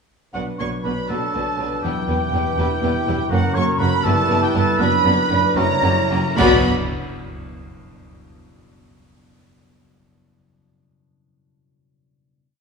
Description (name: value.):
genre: classical, dramatic, fast romantic movement for symphony orchestra.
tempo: 72-82 BPM (dotted quarters).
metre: 6/8.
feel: rubato.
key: B minor.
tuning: A4 = 435 Hz.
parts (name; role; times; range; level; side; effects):
rich symphonic violin section; melody; 0.3-6.7 s; F#5 to C#6; -25 LUFS; equal; none.
mellow hollow silver concert flute; second line; 0.3-6.7 s; F#5 to C#6; -26 LUFS; right 3 dB; none.
rich symphonic violin section; second line; 0.3-6.7 s; C#4 to B4; -29 LUFS; left 2 dB; none.
warm oboe; second line; 0.3-6.6 s; F#4 to C#5; -27 LUFS; right 2 dB; none.
clear symphonic viola section; accompaniment; 0.3-6.7 s; E3 to C#4; -27 LUFS; right 2 dB; none.
mellow French horn section; sustained chords; 0.3-6.6 s; E3 to F#4; -26 LUFS; left 3 dB; none.
concert harp; arpeggios; 0.3-8.0 s; E2 to B5; -27 LUFS; left 6 dB; none.
warm trumpet; stabs; 0.3-6.6 s; A#4 to D5; -27 LUFS; right 4 dB; none.
clear symphonic double bass section; bass; 0.3-6.7 s; E1 to B1; -26 LUFS; right 3 dB; none.
rich symphonic cello section; bass; 0.3-6.7 s; E2 to B2; -25 LUFS; right 2 dB; none.
cymbal swell, clash cymbals and concert bass drum; percussion; 3.3-7.4 s; none; -30 LUFS; equal; none.
room: wet recital hall reverb, RT60 1.7 s.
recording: small room ambience.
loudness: -16 LUFS.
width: side -5 dB against mid.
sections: 0.3-6.4 A section; 6.4-8.0 final chord.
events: slowing down 2.6-6.4; band accent 6.4-6.9.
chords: 0.3 Bm; 1.8 Em; 3.3 F#; 4.1 Em/G; 4.8 Bm/F#; 5.6 F#7b9; 6.4 Bm.